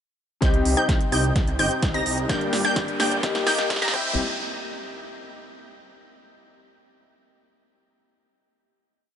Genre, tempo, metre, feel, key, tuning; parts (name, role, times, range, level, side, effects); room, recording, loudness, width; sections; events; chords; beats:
EDM, festival progressive house; 128 BPM; 4/4; straight; C minor; A4 = 441 Hz
clear concert grand piano; accompaniment; 0.4-4.2 s; G2 to G4; -29 LUFS; left 4 dB; sidechain pumping, dub echo
wide unison pluck; arpeggios; 0.4-4.1 s; G6 to Bb6; -28 LUFS; right 1 dB; sidechain pumping, dub echo
supersaw stab; riff; 0.4-4.1 s; Bb3 to Bb5; -28 LUFS; equal; sidechain pumping, low-pass filter, dub echo
wide detuned saw bass; bass; 0.4-4.2 s; Eb1 to Eb2; -28 LUFS; equal; chorus, sidechain pumping
big-room dance drum kit; drums; 0.4-4.0 s; crash cymbal, hi-hat, snare drum; -29 LUFS; right 1 dB
electronic kick drum; drums; 0.4-4.0 s; -24 LUFS; equal
riser; sound effects; 2.2-4.2 s; -33 LUFS; right 2 dB
light reverb; high-pass filter, nothing above 11.0 kHz; -20 LUFS; side -9 dB against mid
0.4-4.2 build; 4.2-6.0 final hit
build-up 0.4-4.2; drum fill 0.4-4.2; filter sweep on supersaw synth 0.4-4.2; filter sweep 0.4-4.2; riser 2.2-4.2
0.4 Cm; 2.3 Gm; 3.2 Eb; 3.9 C; 4.2 N.C.
| 0.42 0.89 1.36 1.83 | 2.30 2.76 3.23 3.70 | 4.17